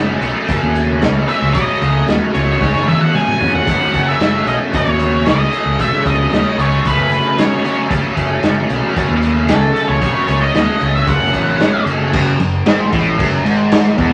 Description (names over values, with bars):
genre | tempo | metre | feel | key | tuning
psychedelic rock | 114 BPM | 4/4 | straight | F# dorian | A4 = 441 Hz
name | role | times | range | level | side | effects
overdriven electric guitar | riff | 0.0-14.1 s | E2 to C#4 | -19 LUFS | equal | rotary speaker
growling picked electric bass | bass | 0.0-14.1 s | E1 to D#2 | -21 LUFS | equal | overdrive
raw garage drum kit | drums | 0.2-14.1 s | crash cymbal, hi-hat, kick drum, snare drum, toms | -21 LUFS | equal | none
octave-fuzz lead guitar | melody | 1.3-11.8 s | A4 to G#5 | -20 LUFS | equal | distortion
room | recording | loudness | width
wet club ambience, RT60 0.5 s | vinyl crackle | -15 LUFS | mono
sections
0.0-12.1 A section; 12.1-14.1 B section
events
drum fill 2.6-3.7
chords
0.0 F#m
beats
0.49 1.02 | 1.55 2.08 2.61 3.14 | 3.67 4.20 4.73 5.26 | 5.79 6.32 6.85 7.38 | 7.91 8.44 8.96 9.49 | 10.02 10.55 11.08 11.60 | 12.13 12.66 13.19 13.71